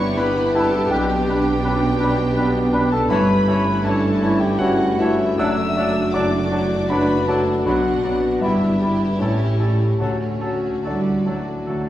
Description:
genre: classical, romantic movement for piano and orchestra.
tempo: 72-84 BPM.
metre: 3/4.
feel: rubato.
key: D major.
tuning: A4 = 440 Hz.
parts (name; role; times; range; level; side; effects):
rich studio violin section; melody; 0.0-11.9 s; C#5 to E6; -36 LUFS; left 3 dB; none.
warm concert grand piano; melody; 0.0-11.9 s; B1 to E6; -21 LUFS; left 1 dB; none.
rich chamber violin section; second line; 0.0-11.9 s; D4 to G4; -32 LUFS; left 1 dB; none.
rich studio viola section; accompaniment; 0.0-11.9 s; A3 to D4; -28 LUFS; right 2 dB; none.
mellow French horn section; sustained chords; 0.0-11.9 s; A3 to G4; -27 LUFS; equal; none.
dark trumpet section; stabs; 0.0-11.9 s; C#4 to E5; -28 LUFS; equal; none.
clear studio cello section; bass; 0.0-11.9 s; F#2 to G3; -27 LUFS; right 2 dB; none.
rich studio double bass section; bass; 0.0-11.9 s; F#1 to D2; -26 LUFS; right 2 dB; none.
clear clarinet; second line; 0.2-11.8 s; D4 to F#4; -30 LUFS; left 1 dB; none.
clear oboe; second line; 0.2-11.8 s; A4 to D5; -32 LUFS; right 1 dB; none.
small flute group; second line; 0.2-11.8 s; A5 to B5; -32 LUFS; equal; none.
clear bassoon; accompaniment; 0.2-11.8 s; E3 to G3; -31 LUFS; equal; none.
timpani; percussion; 10.0-11.2 s; none; barely audible; none; none.
room: wet recital hall reverb, RT60 1.5 s.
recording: heard from further back in the room.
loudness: -17 LUFS.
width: side -13 dB against mid.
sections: 0.0-11.9 A section.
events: none.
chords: 0.0 G6; 0.9 G/B; 3.1 A7/G; 5.4 D/F#; 7.7 Bm; 8.4 Em7/G; 9.2 A7; 10.0 D.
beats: 0.18 | 0.91 1.63 2.35 | 3.09 3.84 4.59 | 5.39 6.14 6.89 | 7.66 8.42 9.20 | 10.01 10.84 11.67.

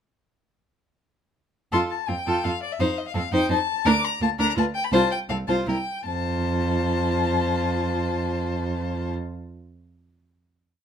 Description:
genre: quick classical-period movement for string quartet.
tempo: 149-172 BPM.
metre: 3/4.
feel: rubato.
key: F major.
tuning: A4 = 440 Hz.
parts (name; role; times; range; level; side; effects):
rich violin; melody; 1.7-9.1 s; D5 to D6; -28 LUFS; left 8 dB; none.
clear violin; second line; 1.7-9.1 s; F4 to C5; -28 LUFS; left 4 dB; none.
clear viola; accompaniment; 1.7-9.1 s; Bb3 to F4; -28 LUFS; right 2 dB; none.
warm cello; bass; 1.7-9.1 s; C2 to F2; -26 LUFS; right 3 dB; none.
room: light reverb.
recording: close, detailed microphones.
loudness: -22 LUFS.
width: side -8 dB against mid.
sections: 1.7-6.1 theme; 6.1-8.3 final chord.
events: slowing down 3.3-6.1.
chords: 1.7 F; 2.8 F7; 3.9 Bb/D; 4.6 N.C.; 4.9 F; 5.7 N.C.; 6.1 F.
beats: | 1.72 2.08 2.44 | 2.79 3.15 3.50 | 3.85 4.21 4.57 | 4.93 5.29 5.67 | 6.07 6.45 6.83 | 7.22 7.60 7.97.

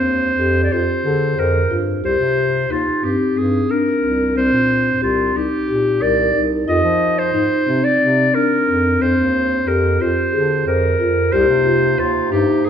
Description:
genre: contemporary instrumental, chamber music in an uneven meter.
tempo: 181 BPM (eighths).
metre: 7/8.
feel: straight.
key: C minor.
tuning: A4 = 440 Hz.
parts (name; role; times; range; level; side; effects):
bright clarinet; melody; 0.0-12.7 s; F4 to Eb5; -18 LUFS; right 1 dB; none.
marimba with soft mallets; arpeggios; 0.0-12.7 s; C4 to C5; -18 LUFS; left 2 dB; none.
mellow bass clarinet; bass; 0.0-12.7 s; C2 to F3; -22 LUFS; equal; none.
clear woodwind section; sustained chords; 11.3-12.7 s; C3 to Eb4; -25 LUFS; right 2 dB; none.
room: wet recital hall reverb, RT60 1.6 s.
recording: minimal, uncompressed stereo recording.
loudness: -14 LUFS.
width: side -8 dB against mid.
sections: 0.0-11.3 A section; 11.3-12.7 A section.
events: none.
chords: 0.0 F7(no3); 2.0 Cm7; 6.7 F7(no3); 11.3 Cm7.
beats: 0.05 0.38 0.71 1.04 1.38 1.71 | 2.04 2.37 2.70 3.03 3.36 3.69 4.02 | 4.36 4.69 5.02 5.35 5.68 6.01 6.34 | 6.68 7.01 7.34 7.67 8.00 8.34 8.67 | 9.00 9.33 9.66 9.99 10.33 10.66 10.99 | 11.32 11.66 11.99 12.32 12.65.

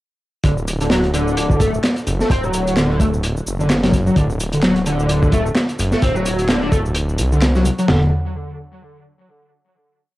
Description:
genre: breakbeat, breaks.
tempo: 129 BPM.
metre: 4/4.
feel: swing 57% on 16ths.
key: unclear.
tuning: A4 = 440 Hz.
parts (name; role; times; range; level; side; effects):
overdriven synth lead; riff; 0.4-8.1 s; D3 to C4; -20 LUFS; equal; ensemble chorus, cassette tape, tape echo.
detuned saw bass; bass; 0.4-8.1 s; D1 to C2; -20 LUFS; equal; none.
crunchy breakbeat drum kit; drums; 0.4-8.0 s; china cymbal, hi-hat, kick drum, snare drum, toms; -19 LUFS; equal; cassette tape.
electronic shaker and handclaps; drums; 0.4-7.9 s; none; -31 LUFS; equal; cassette tape.
room: light reverb, studio ambience.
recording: home recording on cassette.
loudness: -15 LUFS.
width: side -17 dB against mid.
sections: 0.4-7.9 drop; 7.9-9.7 final chord.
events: drop 0.4-7.9.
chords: 0.4 D; 7.9 N.C..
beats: | 0.44 0.91 1.37 1.84 | 2.30 2.77 3.23 3.70 | 4.16 4.63 5.09 5.56 | 6.02 6.49 6.95 7.42 | 7.88.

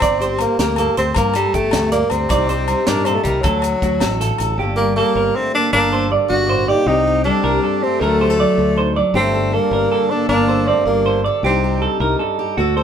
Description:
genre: highlife guitar band.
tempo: 105 BPM (dotted quarters).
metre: 12/8.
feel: straight.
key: G harmonic minor.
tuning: A4 = 440 Hz.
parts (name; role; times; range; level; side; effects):
warm tenor saxophone; melody; 0.0-12.0 s; F#3 to G4; -19 LUFS; right 1 dB; none.
fingerpicked steel-string acoustic guitar; accompaniment; 0.0-12.8 s; G2 to A4; -23 LUFS; left 3 dB; none.
clean electric guitar; arpeggios; 0.0-12.8 s; F#4 to D5; -21 LUFS; right 5 dB; none.
fingered electric bass; bass; 0.0-12.8 s; G1 to G2; -22 LUFS; equal; none.
tight funk drum kit; drums; 0.0-4.5 s; hi-hat, kick drum, snare drum; -23 LUFS; equal; none.
agogo bells; percussion; 0.0-4.6 s; none; -24 LUFS; left 6 dB; none.
breathy trombone; second line; 4.8-12.0 s; F#3 to Eb4; -23 LUFS; left 4 dB; none.
room: moderate studio reverb, RT60 0.8 s.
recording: band playing live in one room.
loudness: -14 LUFS.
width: side -8 dB against mid.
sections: 0.0-4.6 A section; 4.6-12.8 B section.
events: none.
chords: 0.0 Gmadd9; 2.3 Cmadd9; 3.4 D; 4.6 Gmadd9; 6.9 Cmadd9; 8.0 D; 9.1 Gmadd9; 11.4 Cmadd9.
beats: | 0.01 0.58 1.16 1.73 | 2.30 2.87 3.44 4.02 | 4.59 5.16 5.73 6.30 | 6.87 7.44 8.01 8.58 | 9.15 9.72 10.29 10.86 | 11.43 12.00 12.57.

